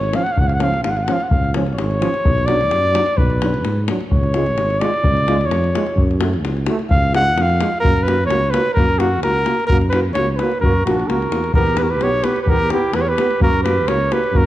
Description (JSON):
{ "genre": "balkan folk, Balkan brass band", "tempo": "129 BPM", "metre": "2/4", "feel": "straight", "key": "unclear", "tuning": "A4 = 440 Hz", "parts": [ { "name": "mellow cornet", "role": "melody", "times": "0.0-14.5 s", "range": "F#4 to F#5", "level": "-19 LUFS", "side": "equal", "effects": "slapback echo" }, { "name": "dark tuba", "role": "bass", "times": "0.0-14.5 s", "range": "G#1 to G#2", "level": "-21 LUFS", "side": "equal", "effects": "none" }, { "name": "davul", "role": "percussion", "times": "0.0-14.5 s", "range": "none", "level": "-20 LUFS", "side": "left 1 dB", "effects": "none" }, { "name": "warm euphonium", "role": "accompaniment", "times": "0.1-14.4 s", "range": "C#4 to G4", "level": "-27 LUFS", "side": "left 2 dB", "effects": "none" }, { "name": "warm trombone", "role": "accompaniment", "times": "0.1-14.4 s", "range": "E#3 to B3", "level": "-27 LUFS", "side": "right 5 dB", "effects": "none" }, { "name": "warm clarinet", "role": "second line", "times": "10.6-14.5 s", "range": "D4 to A#4", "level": "-26 LUFS", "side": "right 4 dB", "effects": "none" } ], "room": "moderate scoring stage reverb, RT60 1.8 s", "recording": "dark, warm production", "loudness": "-15 LUFS", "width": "side -14 dB against mid", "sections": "0.0-7.8 A section; 7.8-14.5 B section", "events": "cornet solo 0.0-7.8", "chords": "0.0 C#; 2.2 Bm; 4.1 C#; 6.0 F#m; 6.9 C#; 7.8 F#; 11.6 Em; 13.4 F#" }